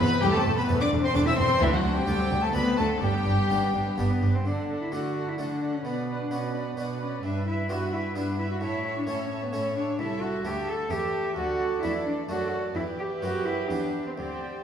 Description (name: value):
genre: classical, baroque-style concerto movement with solo episodes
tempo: 130 BPM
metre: 3/4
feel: straight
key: G major, D major from 4.5 s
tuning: A4 = 440 Hz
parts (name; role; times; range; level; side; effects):
- warm cello; melody; 0.0-14.6 s; E3 to A4; -29 LUFS; left 1 dB; none
- warm chamber violin section; melody; 0.0-14.6 s; E5 to E6; -34 LUFS; left 3 dB; none
- rich chamber violin section; second line; 0.0-14.6 s; E4 to E5; -33 LUFS; equal; none
- harpsichord; accompaniment; 0.0-14.6 s; C2 to A4; -35 LUFS; equal; none
- warm chamber viola section; accompaniment; 0.0-14.6 s; A3 to C#5; -35 LUFS; right 2 dB; none
- dark chamber double bass section; bass; 0.0-4.3 s; E1 to D2; -31 LUFS; right 2 dB; none
- warm chamber cello section; bass; 0.0-14.6 s; C2 to D3; -32 LUFS; right 2 dB; none
room: wet recital hall reverb, RT60 1.7 s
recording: recorded in a church or concert hall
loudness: -24 LUFS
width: side -8 dB against mid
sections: 0.0-4.5 A section; 4.5-14.6 B section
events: none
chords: 0.2 Am/E; 1.6 D5; 3.0 G; 4.5 D; 5.9 Bm; 7.2 Em7/G; 8.6 A; 10.0 Am7/C; 11.4 D; 12.8 Em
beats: | 0.22 0.68 1.15 | 1.61 2.07 2.54 | 3.02 3.50 3.98 | 4.46 4.93 5.39 | 5.85 6.32 6.78 | 7.24 7.70 8.15 | 8.61 9.07 9.53 | 9.99 10.45 10.91 | 11.37 11.83 12.29 | 12.75 13.22 13.70 | 14.18